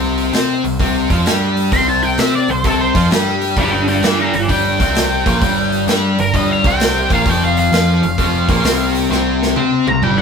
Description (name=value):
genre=blues rock power trio and southern rock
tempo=130 BPM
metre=4/4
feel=swing 66% on 8ths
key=unclear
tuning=A4 = 436 Hz
part: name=cranked stack guitar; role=riff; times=0.0-10.2 s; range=F2 to C5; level=-16 LUFS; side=left 2 dB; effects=overdrive, spring reverb
part: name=growling picked electric bass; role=bass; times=0.0-10.2 s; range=F1 to C3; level=-19 LUFS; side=equal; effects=overdrive
part: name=big rock drum kit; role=drums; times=0.2-10.2 s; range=hi-hat, kick drum, snare drum, toms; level=-19 LUFS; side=equal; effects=none
part: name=octave-fuzz lead guitar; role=melody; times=1.7-10.2 s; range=A4 to C6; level=-18 LUFS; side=equal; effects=wah, distortion
room=moderate studio reverb, RT60 0.5 s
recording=band playing live in one room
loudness=-12 LUFS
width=side -6 dB against mid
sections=0.0-10.2 A section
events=lead electric guitar solo 0.0-10.2; drum fill 9.1-10.2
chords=0.0 C5; 3.6 N.C.; 7.3 F5; 9.1 N.C.